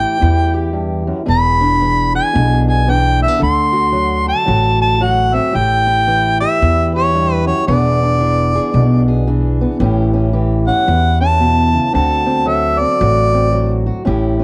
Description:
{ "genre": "acoustic country blues, solo or duo", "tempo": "113 BPM", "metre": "4/4", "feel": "swing 61% on 8ths", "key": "A mixolydian", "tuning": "A4 = 440 Hz", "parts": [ { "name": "mellow harmonica", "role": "melody", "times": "0.0-13.8 s", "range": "C#5 to C6", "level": "-18 LUFS", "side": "equal", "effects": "cassette tape" }, { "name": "fingerpicked steel-string acoustic guitar", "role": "accompaniment", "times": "0.0-14.4 s", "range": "E2 to A4", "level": "-21 LUFS", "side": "equal", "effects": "cassette tape" }, { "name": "upright bass", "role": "bass", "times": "0.0-14.4 s", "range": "E1 to E2", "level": "-18 LUFS", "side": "equal", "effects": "none" } ], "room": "light reverb, studio reverb", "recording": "home recording on cassette", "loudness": "-14 LUFS", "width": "mono", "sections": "0.0-9.8 A section; 9.8-14.4 B section", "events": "harmonica solo 9.8-14.4", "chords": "0.0 A5; 1.3 E7; 3.4 D7; 5.5 A7; 7.7 E7; 9.8 A7; 11.9 D7", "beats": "0.20 0.73 | 1.27 1.80 2.34 2.87 | 3.41 3.94 4.47 5.01 | 5.54 6.08 6.61 7.14 | 7.68 8.21 8.74 9.27 | 9.81 10.34 10.87 11.40 | 11.93 12.46 12.99 13.53 | 14.06" }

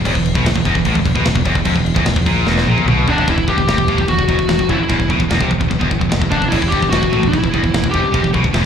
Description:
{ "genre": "heavy metal", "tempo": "148 BPM", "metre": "4/4", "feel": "straight", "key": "E minor", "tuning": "A4 = 439 Hz", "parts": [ { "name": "heavy high-gain guitar", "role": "riff", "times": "0.0-8.6 s", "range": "E2 to C3", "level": "-20 LUFS", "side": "left 8 dB", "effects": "distortion" }, { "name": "scooped high-gain guitar", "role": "riff", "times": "0.0-8.7 s", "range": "E2 to C3", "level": "-23 LUFS", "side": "right 1 dB", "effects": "none" }, { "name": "tight distorted guitar", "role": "riff", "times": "0.0-8.7 s", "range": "E2 to C3", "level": "-23 LUFS", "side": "right 14 dB", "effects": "distortion" }, { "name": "growling fingered electric bass", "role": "bass", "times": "0.0-8.6 s", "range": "E1 to C2", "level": "-19 LUFS", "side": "equal", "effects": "overdrive" }, { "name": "tight metal drum kit", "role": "drums", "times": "0.1-8.6 s", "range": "china cymbal, crash cymbal, kick drum, snare drum, toms", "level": "-19 LUFS", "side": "equal", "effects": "none" }, { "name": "high-gain lead guitar", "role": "melody", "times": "3.1-8.3 s", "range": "D4 to G4", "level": "-19 LUFS", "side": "left 1 dB", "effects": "distortion, slapback echo, tape echo" } ], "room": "little or no reverb", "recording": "live gig heard through the venue's PA, club reverb", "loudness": "-13 LUFS", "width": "side -8 dB against mid", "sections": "0.0-3.3 A section; 3.3-8.7 B section", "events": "drum fill 2.5-3.3", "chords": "0.0 E5; 3.3 Em", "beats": "| 0.05 0.45 0.85 1.26 | 1.66 2.07 2.47 2.88 | 3.28 3.68 4.09 4.49 | 4.90 5.30 5.71 6.11 | 6.52 6.92 7.33 7.73 | 8.14 8.54" }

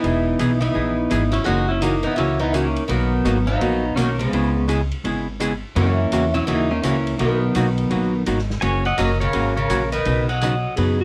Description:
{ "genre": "country, western swing", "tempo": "168 BPM", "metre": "4/4", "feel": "swing 64% on 8ths", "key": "B major", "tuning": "A4 = 438 Hz", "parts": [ { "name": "pedal steel guitar", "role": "melody", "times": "0.0-10.7 s", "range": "F#3 to G#5", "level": "-25 LUFS", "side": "equal", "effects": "none" }, { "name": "oud", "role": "second line", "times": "0.0-10.7 s", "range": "C#3 to C#4", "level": "-28 LUFS", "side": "equal", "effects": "none" }, { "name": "archtop guitar, miked and amplified", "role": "accompaniment", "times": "0.0-11.0 s", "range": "B2 to B4", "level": "-26 LUFS", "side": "equal", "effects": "none" }, { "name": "upright bass", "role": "bass", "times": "0.0-11.0 s", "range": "E1 to F#2", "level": "-25 LUFS", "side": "equal", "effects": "none" }, { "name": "vintage drum kit", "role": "drums", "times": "0.0-10.9 s", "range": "hi-hat, ride cymbal, snare drum", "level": "-38 LUFS", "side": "equal", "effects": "none" }, { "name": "clean lap steel guitar", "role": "second line", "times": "10.8-11.0 s", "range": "F#4 to G#4", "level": "-26 LUFS", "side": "equal", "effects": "none" } ], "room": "moderate club ambience, RT60 0.5 s", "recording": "none", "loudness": "-20 LUFS", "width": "mono", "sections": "0.0-8.6 A section; 8.6-11.0 B section", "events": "none", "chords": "0.0 Emaj7; 1.5 F#6; 2.9 Bmaj7; 4.3 C#m7; 5.8 F#7; 7.2 Bmaj7; 8.6 F#; 10.1 Badd9", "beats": "| 0.04 0.40 0.75 1.11 | 1.47 1.83 2.18 2.54 | 2.90 3.26 3.61 3.97 | 4.33 4.69 5.05 5.40 | 5.76 6.12 6.48 6.84 | 7.19 7.55 7.91 8.27 | 8.62 8.98 9.34 9.70 | 10.06 10.41 10.77" }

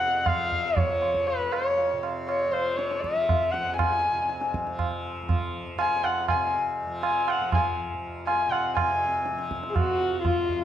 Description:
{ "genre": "indian classical, Hindustani", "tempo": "120 BPM", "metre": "5/4", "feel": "straight", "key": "F raga todi", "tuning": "A4 = 438 Hz", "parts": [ { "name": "dark sarangi", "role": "melody", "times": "0.0-10.6 s", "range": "F4 to Ab5+23c", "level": "-25 LUFS", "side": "left 2 dB", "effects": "none" }, { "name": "tanpura", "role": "drone", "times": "0.0-10.6 s", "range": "F2 to F3", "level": "-35 LUFS", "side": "left 1 dB", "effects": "none" }, { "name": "tabla", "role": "percussion", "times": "0.3-10.6 s", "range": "none", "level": "-28 LUFS", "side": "right 4 dB", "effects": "none" } ], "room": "moderate recital hall reverb, RT60 1.5 s", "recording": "dark, warm production", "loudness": "-24 LUFS", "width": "side -10 dB against mid", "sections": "0.0-8.8 A section; 8.8-10.6 B section", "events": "speeding up 0.0-10.6", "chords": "none", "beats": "0.26 0.77 | 1.27 1.78 2.28 2.79 3.29 | 3.79 4.29 4.79 5.29 5.79 | 6.29 6.78 7.28 7.78 8.27 | 8.76 9.26 9.75 10.24" }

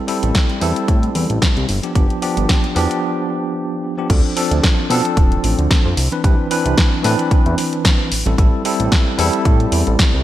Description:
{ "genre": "nu-disco, nu disco", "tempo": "112 BPM", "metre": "4/4", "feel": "swing 55% on 16ths", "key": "D dorian", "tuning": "A4 = 440 Hz", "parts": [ { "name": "bell-like tine electric piano", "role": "accompaniment", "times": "0.0-10.2 s", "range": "E3 to B4", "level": "-19 LUFS", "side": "equal", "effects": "medium stereo tremolo, sidechain pumping, digital delay" }, { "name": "house drum kit", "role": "drums", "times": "0.1-10.1 s", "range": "crash cymbal, hi-hat, snare drum", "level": "-21 LUFS", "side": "equal", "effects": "studio reverb, gated reverb" }, { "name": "fat analog bass", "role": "bass", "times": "0.2-10.2 s", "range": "D1 to B2", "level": "-18 LUFS", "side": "equal", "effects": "none" }, { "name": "electronic kick drum", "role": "drums", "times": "0.3-10.1 s", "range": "none", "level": "-15 LUFS", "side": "equal", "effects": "studio reverb" } ], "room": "light reverb", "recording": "bright 1980s-style digital production", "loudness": "-14 LUFS", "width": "side -13 dB against mid", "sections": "0.0-4.1 A section; 4.1-10.2 B section", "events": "break 3.0-4.1; drop 4.1-10.2", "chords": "0.0 Am7; 1.7 G7; 4.1 Dm7; 6.0 Cmaj9; 8.1 Am7", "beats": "0.35 0.88 1.42 | 1.96 2.49 3.03 3.56 | 4.10 4.63 5.17 5.71 | 6.24 6.78 7.31 7.85 | 8.38 8.92 9.46 9.99" }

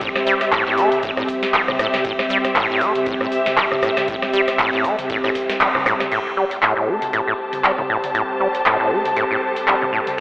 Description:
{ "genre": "acid house", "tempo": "118 BPM", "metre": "4/4", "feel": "swing 56% on 16ths", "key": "A minor", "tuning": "A4 = 440 Hz", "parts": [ { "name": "warbly tape-like pad", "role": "sustained chords", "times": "0.0-10.2 s", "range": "G3 to A4", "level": "-25 LUFS", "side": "right 1 dB", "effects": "chorus, built-in reverb, sidechain pumping" }, { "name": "acid bass, saw", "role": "riff", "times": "0.0-10.0 s", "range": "A2 to A3", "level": "-20 LUFS", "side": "equal", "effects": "overdrive, sidechain pumping, analog delay" }, { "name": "booming analog drum machine", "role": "drums", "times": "0.0-10.2 s", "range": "crash cymbal, handclaps, hi-hat, ride cymbal, rim click, snare drum, toms", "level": "-21 LUFS", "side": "equal", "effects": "none" }, { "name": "electronic kick drum", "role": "drums", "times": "0.0-5.7 s", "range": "none", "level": "-41 LUFS", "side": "equal", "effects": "none" }, { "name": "shaker and snare drum", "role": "drums", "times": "0.0-6.0 s", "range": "none", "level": "-36 LUFS", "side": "equal", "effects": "none" }, { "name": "egg shaker", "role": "percussion", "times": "0.0-6.1 s", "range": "none", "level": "barely audible", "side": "none", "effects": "none" }, { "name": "dark studio string section", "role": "texture", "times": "0.0-10.2 s", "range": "C4 to A5", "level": "-23 LUFS", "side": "left 1 dB", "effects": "sidechain pumping" } ], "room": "wet plate reverb, RT60 2.1 s", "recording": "dreamy mix soaked in reverb, telephone sound", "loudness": "-16 LUFS", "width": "side -23 dB against mid", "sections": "0.0-6.1 A section; 6.1-10.2 B section", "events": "drop 0.0-6.1; band accent 5.6", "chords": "0.0 Am7", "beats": "| 0.01 0.52 1.03 1.54 | 2.05 2.56 3.06 3.57 | 4.08 4.59 5.10 5.61 | 6.12 6.62 7.13 7.64 | 8.15 8.66 9.17 9.68 | 10.18" }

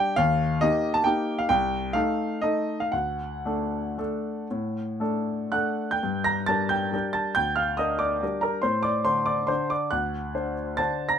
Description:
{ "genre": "classical, piano waltz", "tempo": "112-147 BPM", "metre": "3/4", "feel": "rubato", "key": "G minor", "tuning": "A4 = 440 Hz", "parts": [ { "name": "clear grand piano", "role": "solo", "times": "0.0-11.2 s", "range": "C2 to Bb6", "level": "-23 LUFS", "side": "equal", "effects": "none" } ], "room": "light reverb", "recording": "minimal, uncompressed stereo recording", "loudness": "-23 LUFS", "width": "side -8 dB against mid", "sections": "0.0-6.0 A section; 6.0-11.2 B section", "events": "none", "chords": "0.2 Eb; 1.5 Am7b5/C; 2.9 D; 6.0 Gm; 8.7 D7/A", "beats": "| 0.19 0.62 1.07 | 1.51 1.95 2.43 | 2.95 3.46 3.99 | 4.51 5.01 5.53 | 6.03 6.48 6.93 | 7.36 7.78 8.23 | 8.65 9.07 9.50 | 9.93 10.35 10.78" }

